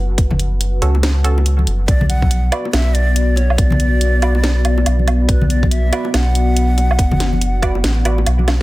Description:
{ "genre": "deep dubstep", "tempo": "141 BPM", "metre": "4/4", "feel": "swing 61% on 16ths, half-time", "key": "unclear", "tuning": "A4 = 439 Hz", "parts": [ { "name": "dark analog pad", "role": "sustained chords", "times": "0.0-8.6 s", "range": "B3 to F#5", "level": "-24 LUFS", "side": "left 3 dB", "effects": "chorus" }, { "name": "soft dub sub bass", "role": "bass", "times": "0.0-8.6 s", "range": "F#1 to C#2", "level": "-15 LUFS", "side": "equal", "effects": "none" }, { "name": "electronic kick drum", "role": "drums", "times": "0.2-7.7 s", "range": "none", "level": "-15 LUFS", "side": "equal", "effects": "none" }, { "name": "garage drum kit", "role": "drums", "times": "0.2-8.6 s", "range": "hi-hat, snare drum, woodblock", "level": "-21 LUFS", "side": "right 1 dB", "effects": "none" }, { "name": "congas and bongos", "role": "percussion", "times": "0.3-8.5 s", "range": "none", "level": "-22 LUFS", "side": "left 1 dB", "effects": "none" }, { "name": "filtered dub chord stab", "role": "stabs", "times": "0.8-8.2 s", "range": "C#4 to D5", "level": "-26 LUFS", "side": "right 3 dB", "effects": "chorus, dub echo" }, { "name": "breathy bright low ney", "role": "melody", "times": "1.9-8.2 s", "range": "B4 to F#5", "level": "-24 LUFS", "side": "equal", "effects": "dub echo" } ], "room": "little or no reverb", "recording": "dense, heavily limited modern master", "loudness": "-13 LUFS", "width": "side -18 dB against mid", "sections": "0.0-8.6 A section", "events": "none", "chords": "0.0 F#m; 1.9 Bm", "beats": "| 0.18 0.61 1.03 1.46 | 1.88 2.31 2.73 3.16 | 3.58 4.01 4.43 4.86 | 5.29 5.71 6.14 6.56 | 6.99 7.41 7.84 8.27" }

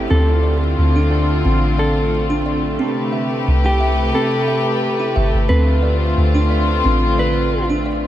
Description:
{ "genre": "trip hop", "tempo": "89 BPM", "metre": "4/4", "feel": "straight", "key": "D dorian", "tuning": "A4 = 440 Hz", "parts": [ { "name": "warm studio string section", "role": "sustained chords", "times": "0.0-8.1 s", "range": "C3 to B4", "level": "-20 LUFS", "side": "left 2 dB", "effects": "none" }, { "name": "soft 808-style bass", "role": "bass", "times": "0.0-8.1 s", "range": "G1 to D2", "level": "-17 LUFS", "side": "equal", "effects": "tube saturation" }, { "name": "mellow electric guitar", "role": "melody", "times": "0.1-7.7 s", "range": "G4 to B4", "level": "-23 LUFS", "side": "equal", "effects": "tape echo" }, { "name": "music box", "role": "arpeggios", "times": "0.1-8.0 s", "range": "C4 to E5", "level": "-23 LUFS", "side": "right 2 dB", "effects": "vintage 12-bit sampler grit, diffuse ambient delay" } ], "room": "moderate huge ambient reverb, RT60 7.1 s", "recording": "dreamy mix soaked in reverb, vinyl crackle", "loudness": "-14 LUFS", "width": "side -12 dB against mid", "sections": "0.0-8.1 A section", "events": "none", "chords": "0.1 Dm7; 2.8 Am7/C; 5.5 Dm7", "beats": "| 0.10 0.78 1.45 2.13 | 2.80 3.48 4.15 4.82 | 5.50 6.17 6.85 7.52" }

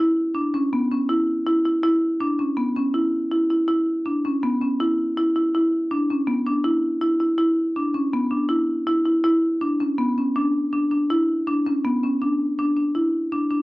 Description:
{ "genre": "progressive instrumental, progressive", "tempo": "162 BPM", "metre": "5/4", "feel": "straight", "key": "unclear", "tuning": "A4 = 439 Hz", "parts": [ { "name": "marimba with medium hard mallets", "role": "solo", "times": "0.0-13.6 s", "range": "B3 to E4", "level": "-19 LUFS", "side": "equal", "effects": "cassette tape" } ], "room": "wet booth ambience, RT60 0.2 s", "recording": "home recording on cassette", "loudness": "-19 LUFS", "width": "side -20 dB against mid", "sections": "0.0-12.9 A section", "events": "none", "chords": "none", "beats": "0.35 0.73 1.10 1.47 | 1.84 2.21 2.58 2.95 3.32 | 3.69 4.06 4.43 4.80 5.17 | 5.54 5.91 6.28 6.65 7.02 | 7.39 7.76 8.13 8.50 8.87 | 9.24 9.61 9.98 10.35 10.72 | 11.09 11.46 11.83 12.20 12.57 | 12.94 13.31" }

